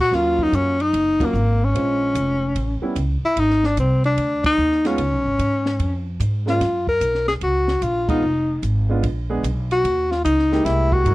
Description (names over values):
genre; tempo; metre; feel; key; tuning
jazz, small-group swing and bop; 148 BPM; 4/4; swing 66% on 8ths; Eb minor; A4 = 439 Hz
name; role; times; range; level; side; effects
breathy tenor saxophone; melody; 0.0-11.1 s; Bb3 to Bb4; -19 LUFS; left 1 dB; none
upright bass; bass; 0.0-11.1 s; F1 to A#2; -22 LUFS; equal; none
warm grand piano; accompaniment; 0.1-11.1 s; Gb3 to C5; -25 LUFS; right 3 dB; none
compact cocktail drum kit; drums; 0.1-11.1 s; hi-hat, kick drum, ride cymbal, snare drum; -28 LUFS; equal; none
room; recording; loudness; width
little or no reverb; dry, close 1970s-style studio recording; -17 LUFS; side -18 dB against mid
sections
0.1-11.1 A section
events
band accent 1.1, 4.4, 8.0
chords
0.1 Ebm7; 1.7 Bbm7; 2.6 A9; 3.4 Ab; 5.0 Db; 6.6 Gbmaj7; 8.2 Fm7b5; 9.0 Bb7b9; 9.8 Eb5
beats
| 0.12 0.53 0.94 1.34 | 1.75 2.15 2.56 2.96 | 3.37 3.77 4.18 4.58 | 4.99 5.39 5.80 6.20 | 6.61 7.01 7.42 7.82 | 8.23 8.63 9.04 9.44 | 9.85 10.25 10.65 11.06